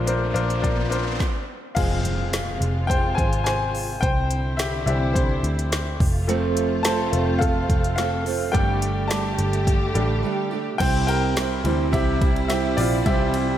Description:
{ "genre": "piano-driven pop", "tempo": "106 BPM", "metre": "4/4", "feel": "straight", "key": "C mixolydian", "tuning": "A4 = 440 Hz", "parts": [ { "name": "bright upright piano", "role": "accompaniment", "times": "0.0-13.6 s", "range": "Bb2 to A5", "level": "-25 LUFS", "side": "left 3 dB", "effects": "slapback echo" }, { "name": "vintage muted picked electric bass", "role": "bass", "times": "0.0-13.6 s", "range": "F1 to D2", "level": "-25 LUFS", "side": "equal", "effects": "none" }, { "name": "riser and impact", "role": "sound effects", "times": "0.0-4.0 s", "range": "none", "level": "-32 LUFS", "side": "equal", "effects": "slapback echo" }, { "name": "deep house drum kit", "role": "drums", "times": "0.1-13.5 s", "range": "crash cymbal, hi-hat, kick drum, ride cymbal, snare drum", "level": "-25 LUFS", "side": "equal", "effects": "none" }, { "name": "warm studio string section", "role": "sustained chords", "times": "1.8-13.6 s", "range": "C3 to G4", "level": "-30 LUFS", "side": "equal", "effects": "none" }, { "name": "fingerpicked steel-string acoustic guitar", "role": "riff", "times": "6.3-13.6 s", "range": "F2 to A4", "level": "-26 LUFS", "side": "right 8 dB", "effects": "slapback echo" } ], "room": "moderate lush hall reverb, RT60 2.2 s", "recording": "big arena sound", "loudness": "-20 LUFS", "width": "side -11 dB against mid", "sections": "0.0-1.8 A section; 1.8-10.8 B section; 10.8-13.6 C section", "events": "riser 0.0-1.8; stop 1.2-1.8; impact 1.8-4.0; upright piano solo 1.8-10.8, 10.8-13.6; break 10.2-10.8", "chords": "0.0 Bbadd9; 1.8 Fm; 4.0 Cadd9; 6.0 F; 8.5 Gsus2; 10.8 C" }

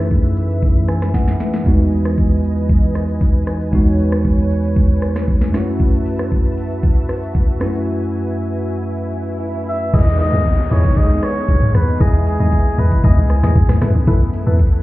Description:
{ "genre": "amapiano", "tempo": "116 BPM", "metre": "4/4", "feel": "straight", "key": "E major", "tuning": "A4 = 440 Hz", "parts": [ { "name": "bell-like tine electric piano", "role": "accompaniment", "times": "0.0-10.0 s", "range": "E2 to G#5", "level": "-18 LUFS", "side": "right 1 dB", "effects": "auto-pan" }, { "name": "lush unison pad", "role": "sustained chords", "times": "0.0-14.8 s", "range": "E3 to A5", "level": "-26 LUFS", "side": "left 1 dB", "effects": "chorus" }, { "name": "warm sub bass", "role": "bass", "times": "0.0-1.4 s", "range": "F#2", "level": "-17 LUFS", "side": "equal", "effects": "none" }, { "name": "smooth R&B drum kit", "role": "drums", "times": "0.1-14.8 s", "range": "hi-hat, kick drum, rim click, shaker, snare drum, toms", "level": "-16 LUFS", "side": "equal", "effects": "none" }, { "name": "swell and downlifter", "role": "sound effects", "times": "8.7-14.1 s", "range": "none", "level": "-30 LUFS", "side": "right 1 dB", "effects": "none" }, { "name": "trumpet with cup mute", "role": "melody", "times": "9.7-13.8 s", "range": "G#4 to E5", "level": "-23 LUFS", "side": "equal", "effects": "digital delay" }, { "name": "percussive organ stab", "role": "stabs", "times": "9.9-14.6 s", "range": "E4 to D#5", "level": "-26 LUFS", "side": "left 3 dB", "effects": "chorus, digital delay" }, { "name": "deep log drum bass", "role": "bass", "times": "9.9-14.8 s", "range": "B1 to F#2", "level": "-15 LUFS", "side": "equal", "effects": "none" } ], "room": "little or no reverb", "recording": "heard muffled through a wall, club reverb, EQ", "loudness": "-14 LUFS", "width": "side -18 dB against mid", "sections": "0.0-9.9 A section; 9.9-14.8 B section", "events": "tine electric piano fill 0.6-1.7; drum fill 1.1-1.7; break 7.9-9.9; swell 8.7-9.9; drop 9.9-14.8", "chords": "0.0 B7sus4/F#; 1.7 Emaj7; 5.5 B7sus4/F#; 9.9 Emaj7; 13.8 B7sus4" }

